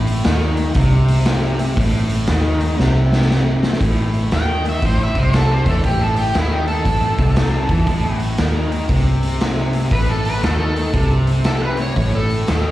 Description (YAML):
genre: blues rock power trio and southern rock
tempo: 118 BPM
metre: 4/4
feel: swing 65% on 8ths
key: unclear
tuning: A4 = 440 Hz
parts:
  - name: fuzz guitar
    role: riff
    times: 0.0-12.7 s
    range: A2 to E3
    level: -22 LUFS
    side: equal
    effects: distortion
  - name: vintage muted fingered electric bass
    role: bass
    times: 0.0-12.7 s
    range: A1 to E2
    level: -18 LUFS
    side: equal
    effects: none
  - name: raw garage drum kit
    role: drums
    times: 0.1-12.6 s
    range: hi-hat, kick drum, snare drum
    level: -20 LUFS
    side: equal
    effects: none
  - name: overdriven slide guitar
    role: melody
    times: 4.3-12.7 s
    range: E4 to G5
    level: -23 LUFS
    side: equal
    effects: slapback echo
room: little or no reverb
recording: live gig heard through the venue's PA, club reverb, vinyl crackle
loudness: -15 LUFS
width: side -15 dB against mid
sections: 0.0-3.8 A section; 3.8-12.7 B section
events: drum fill 2.8-3.8; electric slide guitar solo 3.8-12.7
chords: 0.0 A5